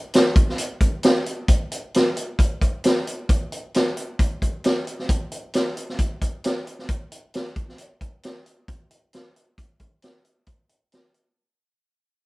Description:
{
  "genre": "rock",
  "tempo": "133 BPM",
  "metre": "4/4",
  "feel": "straight",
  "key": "none",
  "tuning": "none",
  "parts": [
    { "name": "vintage drum kit", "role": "drums", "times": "0.1-11.2 s", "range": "hi-hat, kick drum, snare drum", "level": "-20 LUFS", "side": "equal", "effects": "none" }
  ],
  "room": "moderate studio reverb, RT60 0.6 s",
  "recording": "band playing live in one room",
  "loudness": "-21 LUFS",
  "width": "side -22 dB against mid",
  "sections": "0.0-11.4 A section",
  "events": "fade-out 0.0-11.4",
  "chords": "none"
}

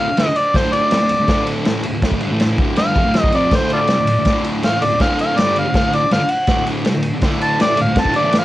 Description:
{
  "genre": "garage rock duo or trio",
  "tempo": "162 BPM",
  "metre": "4/4",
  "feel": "straight",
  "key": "unclear",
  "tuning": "A4 = 440 Hz",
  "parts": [
    { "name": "overdriven harmonica", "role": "melody", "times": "0.0-8.4 s", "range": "F4 to A5", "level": "-17 LUFS", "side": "equal", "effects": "cassette tape" },
    { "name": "fuzz guitar", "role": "riff", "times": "0.0-8.4 s", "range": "D2 to A3", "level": "-19 LUFS", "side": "equal", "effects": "distortion, cassette tape" },
    { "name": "vintage drum kit", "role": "drums", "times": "0.2-8.4 s", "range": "crash cymbal, kick drum, ride cymbal, snare drum", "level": "-19 LUFS", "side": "equal", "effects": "cassette tape" }
  ],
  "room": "small room ambience",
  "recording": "home recording on cassette",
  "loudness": "-14 LUFS",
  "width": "side -15 dB against mid",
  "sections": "0.0-8.4 A section",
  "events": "harmonica solo 0.0-8.4",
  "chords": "0.0 D5"
}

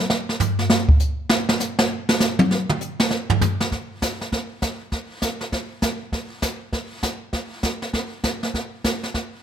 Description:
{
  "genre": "jazz",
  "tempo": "199 BPM",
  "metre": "4/4",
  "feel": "swing 62% on 8ths",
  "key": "none",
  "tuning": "none",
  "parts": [
    { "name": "jazz brush drum kit", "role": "drums", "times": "0.1-9.4 s", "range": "brushed snare drum, hi-hat, kick drum, snare drum, toms", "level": "-20 LUFS", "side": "right 1 dB", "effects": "none" }
  ],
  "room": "moderate large studio reverb, RT60 0.9 s",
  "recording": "close, detailed microphones",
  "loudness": "-20 LUFS",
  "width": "side -9 dB against mid",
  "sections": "0.0-3.7 A section; 3.7-9.4 B section",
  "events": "drum solo 0.0-3.7",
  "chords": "none"
}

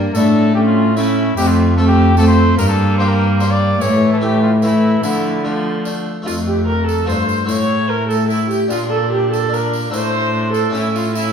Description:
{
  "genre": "classical, renaissance-style consort dance",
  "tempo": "148 BPM",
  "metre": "3/4",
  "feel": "straight",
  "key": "unclear",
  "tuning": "A4 = 440 Hz",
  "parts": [
    { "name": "warm viola", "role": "second line", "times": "0.0-11.3 s", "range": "A3 to C#5", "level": "-19 LUFS", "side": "right 3 dB", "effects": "none" },
    { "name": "harpsichord", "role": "accompaniment", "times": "0.0-11.3 s", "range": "F2 to A4", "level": "-24 LUFS", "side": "left 2 dB", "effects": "none" },
    { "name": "rich viola", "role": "accompaniment", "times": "0.0-11.3 s", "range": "E3 to D4", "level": "-21 LUFS", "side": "left 3 dB", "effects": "none" },
    { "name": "warm cello", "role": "bass", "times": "0.0-11.3 s", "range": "F2 to D3", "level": "-17 LUFS", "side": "equal", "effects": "none" },
    { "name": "warm cornet", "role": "melody", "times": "0.1-11.3 s", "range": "E4 to D5", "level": "-22 LUFS", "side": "left 2 dB", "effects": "none" },
    { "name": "tambourine", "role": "percussion", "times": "0.1-11.3 s", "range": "none", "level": "-34 LUFS", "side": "right 3 dB", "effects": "none" }
  ],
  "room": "wet stone room reverb, RT60 1.2 s",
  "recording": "heard from further back in the room",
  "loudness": "-13 LUFS",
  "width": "side -7 dB against mid",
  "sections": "0.0-6.3 A section; 6.3-11.3 B section",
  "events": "none",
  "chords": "0.1 Asus4; 0.6 A; 1.4 F; 2.6 Gm; 3.8 A5; 5.0 Dm; 6.3 F; 7.5 A; 8.7 Bb; 9.9 Asus4; 10.7 A"
}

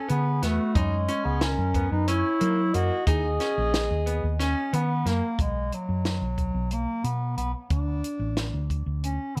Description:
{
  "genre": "progressive instrumental, band music in an uneven meter",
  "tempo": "181 BPM (eighths)",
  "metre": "7/8",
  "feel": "straight",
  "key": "unclear",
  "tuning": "A4 = 437 Hz",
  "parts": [
    { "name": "warm bass clarinet", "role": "melody", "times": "0.0-9.4 s", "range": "F#3 to G#4", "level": "-31 LUFS", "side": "equal", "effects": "analog delay" },
    { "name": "warm flugelhorn", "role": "second line", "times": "0.0-4.7 s", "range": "C#4 to D#5", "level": "-36 LUFS", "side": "equal", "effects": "plate reverb" },
    { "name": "bright grand piano", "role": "arpeggios", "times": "0.1-5.2 s", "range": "A#3 to D#4", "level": "-36 LUFS", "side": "equal", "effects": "none" },
    { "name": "hollow-body short-scale fingered electric bass", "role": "bass", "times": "0.1-9.4 s", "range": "A1 to F#3", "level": "-29 LUFS", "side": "equal", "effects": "none" },
    { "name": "compact cocktail drum kit", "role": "drums", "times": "0.1-9.4 s", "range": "hi-hat, kick drum, snare drum", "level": "-31 LUFS", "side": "equal", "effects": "none" }
  ],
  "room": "moderate studio reverb, RT60 0.8 s",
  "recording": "none",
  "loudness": "-26 LUFS",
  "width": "mono",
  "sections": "0.0-5.4 A section; 5.4-9.4 B section",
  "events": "none",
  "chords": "0.0 D5; 0.8 F#; 3.1 D#sus4; 5.4 B5; 7.7 D5"
}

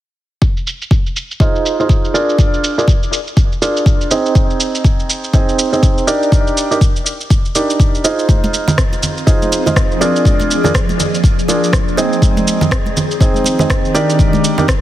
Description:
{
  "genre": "afro house",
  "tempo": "122 BPM",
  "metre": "4/4",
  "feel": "swing 59% on 16ths",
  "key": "F dorian",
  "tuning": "A4 = 440 Hz",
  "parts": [
    { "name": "electronic kick drum", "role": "drums", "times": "0.4-14.8 s", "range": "none", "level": "-13 LUFS", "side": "equal", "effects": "studio reverb" },
    { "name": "electronic shaker and rim click", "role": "drums", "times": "0.4-14.8 s", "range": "none", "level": "-20 LUFS", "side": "right 1 dB", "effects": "low-pass filter on perc, studio reverb, low-pass filter on snare" },
    { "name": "felt-muted upright piano", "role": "stabs", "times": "1.4-14.6 s", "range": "C4 to Eb5", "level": "-16 LUFS", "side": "right 2 dB", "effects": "sidechain pumping, low-pass filter, ping-pong delay" },
    { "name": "ethereal airy pad", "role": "sustained chords", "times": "9.1-14.8 s", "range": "Eb3 to Eb5", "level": "-19 LUFS", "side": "left 1 dB", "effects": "ensemble chorus, built-in reverb, phaser, sidechain pumping" },
    { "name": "congas", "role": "percussion", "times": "8.3-14.7 s", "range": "none", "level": "-19 LUFS", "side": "right 2 dB", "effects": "none" }
  ],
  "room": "light reverb, small room ambience",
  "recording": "heavily compressed radio sound",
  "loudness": "-11 LUFS",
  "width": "side -13 dB against mid",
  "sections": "0.4-14.8 A section",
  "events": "none",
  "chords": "0.4 Fm7; 2.4 Bb7; 4.4 Ab; 6.3 Ebmaj7; 8.3 Fm7; 12.2 Ab; 14.2 Ebmaj7"
}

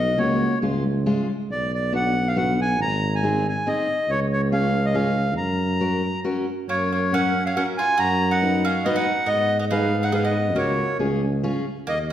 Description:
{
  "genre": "alpine folk, alpine dance band",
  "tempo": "139 BPM",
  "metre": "3/4",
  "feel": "straight",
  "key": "F# major",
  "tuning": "A4 = 440 Hz",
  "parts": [
    { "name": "accordion", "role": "melody", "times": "0.0-12.0 s", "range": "C#5 to A#5", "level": "-23 LUFS", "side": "equal", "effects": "none" },
    { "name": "mellow tuba", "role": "bass", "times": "0.0-12.1 s", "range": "G#1 to G#2", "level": "-24 LUFS", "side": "equal", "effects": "none" },
    { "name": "fingerpicked steel-string acoustic guitar", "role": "accompaniment", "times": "0.2-11.6 s", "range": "G#3 to B4", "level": "-26 LUFS", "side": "left 1 dB", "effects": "none" },
    { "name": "bowl-back mandolin", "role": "second line", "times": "6.7-12.1 s", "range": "A#3 to F#4", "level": "-29 LUFS", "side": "right 3 dB", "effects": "none" }
  ],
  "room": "wet recital hall reverb, RT60 1.3 s",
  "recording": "heard from further back in the room",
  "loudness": "-20 LUFS",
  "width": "side -11 dB against mid",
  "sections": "0.0-12.1 A section",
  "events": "none",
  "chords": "0.2 F#/C#; 0.6 C#; 1.5 Bm; 2.8 G#; 4.1 C#; 5.4 F#; 8.0 B/F#; 9.3 G#m; 10.6 F#/C#; 11.0 C#"
}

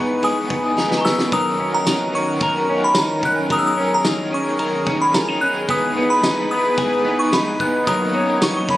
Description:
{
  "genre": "dream pop",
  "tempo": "110 BPM",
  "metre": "4/4",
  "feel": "straight",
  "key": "B major",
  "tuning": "A4 = 441 Hz",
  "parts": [
    { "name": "glassy synth bell", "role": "melody", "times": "0.0-8.8 s", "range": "A#5 to F#6", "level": "-21 LUFS", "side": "equal", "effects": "chorus, ping-pong delay" },
    { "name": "crunchy overdriven guitar", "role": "accompaniment", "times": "0.0-8.8 s", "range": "B2 to A#4", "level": "-26 LUFS", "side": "right 2 dB", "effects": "tremolo, analog chorus" },
    { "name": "warm analog pad", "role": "sustained chords", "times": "0.0-8.8 s", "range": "D#3 to C#5", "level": "-24 LUFS", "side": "equal", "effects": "chorus, tremolo" },
    { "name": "semi-hollow electric guitar", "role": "arpeggios", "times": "0.0-8.8 s", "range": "F#3 to A#4", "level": "-22 LUFS", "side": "left 1 dB", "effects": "lush chorus, ping-pong delay" },
    { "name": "loose indie drum kit", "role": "drums", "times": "0.2-8.8 s", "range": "kick drum, ride cymbal, snare drum, tambourine", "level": "-24 LUFS", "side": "equal", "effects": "none" },
    { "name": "glockenspiel with hard plastic mallets", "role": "texture", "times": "1.0-4.2, 8.6-8.8 s", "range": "G#5 to C#6", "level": "-33 LUFS", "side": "right 1 dB", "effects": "none" }
  ],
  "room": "light reverb, studio reverb",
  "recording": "recorded on a phone in the room, studio ambience, compression",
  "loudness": "-16 LUFS",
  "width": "side -15 dB against mid",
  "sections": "0.0-8.8 A section",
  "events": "drum fill 0.8-1.3",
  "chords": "0.0 Emaj7; 1.3 Bmaj9; 5.7 Emaj7; 7.9 Bmaj9"
}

